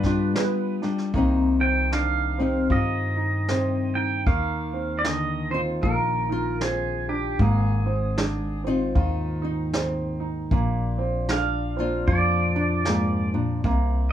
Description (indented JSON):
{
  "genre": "acoustic folk duo or small band",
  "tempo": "77 BPM",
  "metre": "4/4",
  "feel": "swing 60% on 8ths",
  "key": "C minor",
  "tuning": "A4 = 441 Hz",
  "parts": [
    { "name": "bluegrass banjo", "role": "melody", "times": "0.0-0.8 s", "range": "none", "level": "barely audible", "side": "none", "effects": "none" },
    { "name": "pedal steel guitar", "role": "second line", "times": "0.0-13.3 s", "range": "G4 to G5", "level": "-28 LUFS", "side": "right 3 dB", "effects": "slapback echo" },
    { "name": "nylon-string guitar", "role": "accompaniment", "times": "0.0-14.1 s", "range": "G2 to G4", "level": "-27 LUFS", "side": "left 4 dB", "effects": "none" },
    { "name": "clear upright piano", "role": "arpeggios", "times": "0.0-14.1 s", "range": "D3 to F4", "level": "-30 LUFS", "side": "right 5 dB", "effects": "none" },
    { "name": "upright bass", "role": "bass", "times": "0.0-14.1 s", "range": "Ab1 to G2", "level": "-26 LUFS", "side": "equal", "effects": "none" },
    { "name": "vintage brush drum kit", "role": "drums", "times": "0.0-13.9 s", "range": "kick drum, snare drum", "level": "-27 LUFS", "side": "equal", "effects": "none" }
  ],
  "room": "light reverb",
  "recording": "none",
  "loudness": "-22 LUFS",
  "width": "side -10 dB against mid",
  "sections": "0.0-1.1 A section; 1.1-14.1 B section",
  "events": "pedal steel guitar solo 1.1-14.1",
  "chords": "0.0 G7; 1.1 Cm; 4.3 Ebsus2; 7.4 Ab6; 10.5 Bb",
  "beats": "0.36 | 1.14 1.92 2.71 3.49 | 4.27 5.05 5.83 6.62 | 7.40 8.18 8.96 9.74 | 10.53 11.31 12.09 12.87 | 13.65"
}